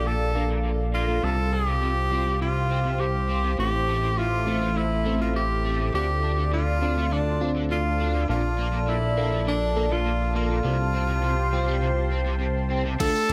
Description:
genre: synthwave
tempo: 102 BPM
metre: 4/4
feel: straight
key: unclear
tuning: A4 = 439 Hz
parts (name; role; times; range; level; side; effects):
- bright tenor saxophone; melody; 0.0-13.3 s; D4 to A4; -30 LUFS; equal; tape echo
- soft synth bell; second line; 0.0-13.3 s; D4 to A4; -39 LUFS; equal; none
- phased analog pad; sustained chords; 0.0-13.3 s; G4 to D6; -35 LUFS; equal; phaser, chorus, sidechain pumping
- FM electric piano with soft pad layer; stabs; 0.0-13.3 s; G3 to A4; -34 LUFS; equal; chorus, phaser, low-pass filter
- fat analog bass; bass; 0.0-13.3 s; A1 to D2; -28 LUFS; equal; sidechain pumping
- crunchy overdriven guitar; riff; 0.1-13.3 s; A2 to D4; -37 LUFS; equal; ensemble chorus, low-pass filter, tape echo
- electronic kick drum; drums; 13.0-13.1 s; none; -31 LUFS; equal; overdrive
- pop drum kit; drums; 13.0-13.3 s; crash cymbal, hi-hat, tambourine; -36 LUFS; equal; overdrive
room: moderate plate reverb, RT60 2.2 s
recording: none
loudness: -25 LUFS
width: mono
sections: 0.0-13.0 A section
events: filter sweep on analog synth pad 0.0-13.0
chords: 0.0 Bbmaj7; 1.2 Csus4; 3.6 Am; 5.9 Dm7; 8.3 Bbmaj7; 10.6 Csus4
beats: 0.06 0.65 | 1.24 1.82 2.41 3.00 | 3.59 4.18 4.77 5.35 | 5.94 6.53 7.12 7.71 | 8.29 8.88 9.47 10.06 | 10.65 11.24 11.82 12.41 | 13.00

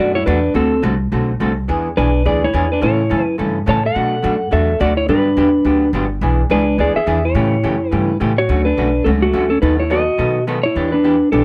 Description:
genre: country, western swing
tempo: 212 BPM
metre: 4/4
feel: swing 60% on 8ths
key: D major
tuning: A4 = 440 Hz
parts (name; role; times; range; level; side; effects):
- clean lap steel guitar; melody; 0.0-11.4 s; A3 to A5; -18 LUFS; equal; none
- vintage hollow-body jazz guitar; accompaniment; 0.0-11.4 s; B2 to A4; -23 LUFS; equal; none
- upright bass; bass; 0.0-11.4 s; G1 to B2; -21 LUFS; equal; none
room: light reverb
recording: none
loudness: -16 LUFS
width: mono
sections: 0.0-8.5 A section; 8.5-11.4 B section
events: none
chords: 0.0 Bm7; 0.6 D7; 1.7 E7; 2.8 A; 4.0 Bm7; 5.1 Gmaj7; 6.2 E7; 7.4 A7; 8.5 Dmaj7; 9.6 B7/D#; 10.8 Em7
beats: 0.27 | 0.55 0.84 1.12 1.41 | 1.69 1.97 2.25 2.54 | 2.82 3.10 3.39 3.67 | 3.96 4.24 4.52 4.80 | 5.09 5.37 5.66 5.94 | 6.22 6.50 6.79 7.07 | 7.36 7.64 7.92 8.21 | 8.49 8.77 9.05 9.34 | 9.62 9.90 10.19 10.47 | 10.76 11.04 11.32

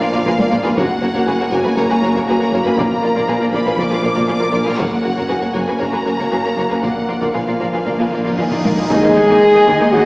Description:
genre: cinematic, epic orchestral film score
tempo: 118 BPM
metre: 4/4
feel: straight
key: unclear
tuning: A4 = 440 Hz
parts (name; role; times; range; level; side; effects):
- warm symphonic violin section; melody; 0.0-10.1 s; Eb5 to F6; -24 LUFS; equal; none
- warm symphonic violin section; second line; 0.0-10.1 s; Ab4 to Eb5; -22 LUFS; equal; none
- clear symphonic viola section; accompaniment; 0.0-10.0 s; Bb3 to Gb4; -21 LUFS; equal; none
- warm French horn section; sustained chords; 0.0-10.1 s; Db4 to Bb4; -19 LUFS; equal; none
- warm trombone section; sustained chords; 0.0-10.1 s; Eb3 to Bb3; -22 LUFS; equal; none
- clear symphonic double bass section; bass; 0.0-10.0 s; Gb1 to Eb2; -29 LUFS; equal; none
- mellow tuba; bass; 0.0-10.0 s; Gb1 to Eb2; -25 LUFS; equal; none
- rich symphonic cello section; bass; 0.0-10.0 s; Gb2 to Eb3; -25 LUFS; equal; none
- taiko ensemble; drums; 0.1-10.1 s; none; -26 LUFS; equal; none
- timpani; percussion; 2.8-3.5, 6.8-8.9 s; Bb2; -27 LUFS; equal; none
- cymbal swell and impact; sound effects; 8.0-10.1 s; none; -30 LUFS; equal; none
- bright trumpet section; stabs; 8.4-10.1 s; Eb4 to Ab4; -21 LUFS; equal; none
room: wet scoring stage reverb, RT60 1.6 s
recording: heard from further back in the room, small speaker sound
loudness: -13 LUFS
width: side -27 dB against mid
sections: 0.0-8.9 A section; 8.9-10.1 B section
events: drum fill 0.3-0.8, 8.4-8.9; timpani fill 6.8-8.9; cymbal swell 8.0-8.9; impact 8.9-10.1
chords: 0.0 Bb; 0.8 Gb; 2.8 Bb; 4.8 Gb; 6.8 Bb; 8.9 Ebm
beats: 0.26 | 0.76 1.26 1.77 2.27 | 2.77 3.28 3.78 4.29 | 4.80 5.30 5.81 6.32 | 6.83 7.35 7.87 8.39 | 8.91 9.43 9.93

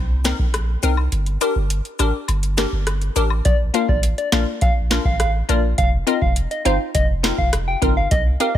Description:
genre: dancehall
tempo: 103 BPM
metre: 4/4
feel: straight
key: unclear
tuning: A4 = 436 Hz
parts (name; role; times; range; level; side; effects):
- punchy sub bass; bass; 0.0-8.6 s; F1 to C2; -21 LUFS; equal; none
- glassy wavetable pluck; accompaniment; 0.2-8.5 s; Bb3 to C5; -23 LUFS; left 3 dB; chorus
- booming analog drum machine; drums; 0.2-8.6 s; hi-hat, kick drum, rim click, snare drum; -20 LUFS; equal; none
- cabasa and woodblock; percussion; 0.2-3.4 s; none; -32 LUFS; left 9 dB; none
- soft struck synth lead; melody; 3.5-8.6 s; D5 to G5; -23 LUFS; equal; chorus, ping-pong delay
room: little or no reverb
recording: none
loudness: -17 LUFS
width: side -11 dB against mid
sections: 0.0-3.5 A section; 3.5-8.6 B section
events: kick muted 1.1-3.5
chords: 0.0 Cm7; 1.1 Gm; 3.5 Bb; 5.8 F7sus4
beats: 0.54 | 1.12 1.71 2.29 2.87 | 3.45 4.04 4.62 5.20 | 5.78 6.37 6.95 7.53 | 8.11

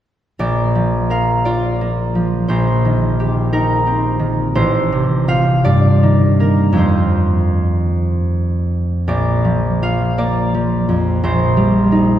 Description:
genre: classical, solo harp piece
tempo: 51-59 BPM (dotted quarters)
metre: 6/8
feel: rubato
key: Bb major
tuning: A4 = 440 Hz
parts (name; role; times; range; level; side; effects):
- concert harp; solo; 0.4-12.2 s; A1 to F5; -13 LUFS; equal; none
room: wet church reverb, RT60 2.9 s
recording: recorded in a church or concert hall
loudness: -13 LUFS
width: side -11 dB against mid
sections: 0.4-12.2 A section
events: none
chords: 0.4 Bb; 2.5 Cm7/Bb; 4.6 F/A; 5.7 Eb/G; 6.8 F; 9.1 Bb; 11.2 Cm7/Bb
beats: | 0.39 1.45 | 2.49 3.53 | 4.57 5.65 | 6.78 7.94 | 9.08 10.17 | 11.22

